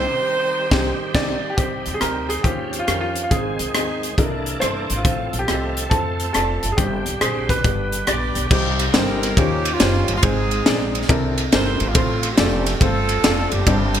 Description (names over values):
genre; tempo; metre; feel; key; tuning
uptempo gospel; 139 BPM; 4/4; swing 65% on 8ths; C minor; A4 = 440 Hz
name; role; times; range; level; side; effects
clear saxophone section; melody; 0.0-1.1, 8.1-14.0 s; A3 to D5; -24 LUFS; right 2 dB; digital delay
warm upright piano; accompaniment; 0.0-14.0 s; G2 to Eb5; -25 LUFS; left 2 dB; none
bright tonewheel organ; sustained chords; 0.0-8.5 s; D3 to A4; -30 LUFS; right 4 dB; fast rotary speaker, overdrive, chorus vibrato
upright bass; bass; 0.0-14.0 s; F1 to F2; -25 LUFS; equal; none
crisp fusion drum kit; drums; 0.7-14.0 s; crash cymbal, hi-hat, kick drum, ride cymbal, rim click, snare drum; -20 LUFS; equal; gated reverb
clear grand piano; melody; 1.1-8.4 s; F4 to D5; -25 LUFS; right 1 dB; none
room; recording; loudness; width
moderate lush hall reverb, RT60 2.0 s, small room ambience; bright 1980s-style digital production; -17 LUFS; side -9 dB against mid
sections
0.0-1.6 A section; 1.6-8.5 B section; 8.5-14.0 A section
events
band accent 0.0-1.6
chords
0.0 Cm; 2.4 Eb13; 3.3 Ab; 4.2 C13; 5.0 F/A; 6.8 Gsus4; 7.6 G; 8.5 Cm; 9.4 Eb13; 10.2 Ab; 11.1 C13; 12.0 F